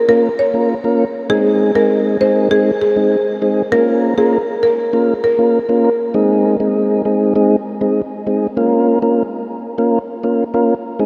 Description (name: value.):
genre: dancehall.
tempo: 99 BPM.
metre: 4/4.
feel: straight.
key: Bb minor.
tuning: A4 = 440 Hz.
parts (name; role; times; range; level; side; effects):
buzzing marimba with medium mallets; melody; 0.1-5.4 s; Ab4 to Db5; -18 LUFS; equal; analog delay.
tonewheel organ; accompaniment; 0.1-11.1 s; Ab3 to Bb4; -17 LUFS; equal; overdrive, slow rotary speaker.
room: wet huge ambient reverb, RT60 7.0 s.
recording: dreamy mix soaked in reverb.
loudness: -15 LUFS.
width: mono.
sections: 0.0-11.1 A section.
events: none.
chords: 0.0 Bbm; 1.3 Ab; 3.7 Bbm; 6.1 Ab; 8.6 Bbm.